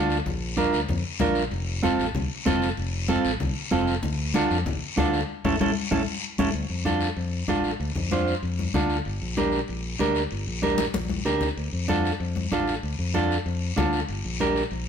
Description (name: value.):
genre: latin, cumbia.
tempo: 191 BPM.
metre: 4/4.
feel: straight.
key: D minor.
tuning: A4 = 442 Hz.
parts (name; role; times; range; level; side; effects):
mellow electric guitar; accompaniment; 0.0-14.6 s; C4 to C5; -25 LUFS; right 3 dB; warbly pitch drift.
fingered electric bass; bass; 0.0-14.9 s; F1 to F2; -29 LUFS; left 1 dB; none.
guiro; percussion; 0.1-14.9 s; none; -34 LUFS; left 5 dB; none.
congas; percussion; 0.3-14.6 s; none; -30 LUFS; left 5 dB; none.
room: moderate studio reverb, RT60 0.9 s.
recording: band playing live in one room.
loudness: -23 LUFS.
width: side -7 dB against mid.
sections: 0.0-6.5 A section; 6.5-14.9 B section.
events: drum fill 5.3-6.5, 10.8-11.6; band accent 5.3-6.5.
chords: 0.3 Bb; 1.5 F; 4.0 Dm; 5.3 A; 6.5 Dm; 9.1 Gm; 11.6 Dm; 14.1 Gm.